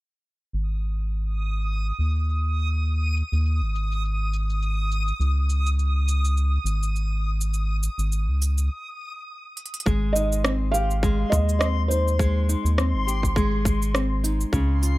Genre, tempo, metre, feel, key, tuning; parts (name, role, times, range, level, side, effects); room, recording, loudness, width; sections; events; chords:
folktronica; 103 BPM; 4/4; swing 56% on 16ths; Ab major; A4 = 440 Hz
round analog bass; bass; 0.5-15.0 s; Ab1 to Eb2; -22 LUFS; equal
backwards swelling texture; texture; 1.4-15.0 s; C6 to Eb6; -33 LUFS; left 1 dB; built-in reverb
organic electronic drum kit; drums; 0.6-14.9 s; hi-hat, rim click, shaker; -29 LUFS; right 1 dB; overdrive, low-pass filter on perc, low-pass filter on hats, low-pass filter on snare, low-pass filter on room
nylon-string guitar; arpeggios; 9.9-15.0 s; Db3 to G4; -27 LUFS; equal; tape echo
electronic kick drum; drums; 9.9-14.7 s; -23 LUFS; equal; overdrive
felt-muted upright piano; melody; 10.1-12.4 s; C5 to F5; -27 LUFS; right 2 dB; plate reverb
light reverb; -21 LUFS; side -19 dB against mid
0.5-9.9 A section; 9.9-15.0 B section
filter sweep on drum 0.5-9.9; stop 8.7-9.9; drum fill 9.6
0.5 Ab5; 5.2 Db5; 9.9 Abmaj7